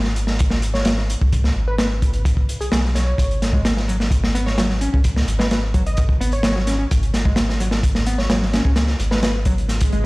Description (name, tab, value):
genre	breakbeat, breaks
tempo	129 BPM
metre	4/4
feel	straight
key	G# minor pentatonic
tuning	A4 = 440 Hz
part	saturated sub bass	bass	0.0-10.1 s	G#1 to C#2	-21 LUFS	equal	none
part	crunchy breakbeat drum kit	drums	0.0-10.0 s	hi-hat, kick drum, snare drum	-19 LUFS	equal	none
part	plucky unison lead	melody	0.7-9.3 s	G#4 to D#5	-30 LUFS	equal	old record sound, tape echo
part	overdriven picked electric bass	riff	3.5-10.0 s	F#3 to C#4	-26 LUFS	equal	tape echo
part	swell	sound effects	9.8-10.1 s	none	-28 LUFS	right 3 dB	none
room	small room ambience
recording	played on a big sound system in a bare room, stone room reverb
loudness	-16 LUFS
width	side -23 dB against mid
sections	0.0-10.1 A section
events	swell 9.8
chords	none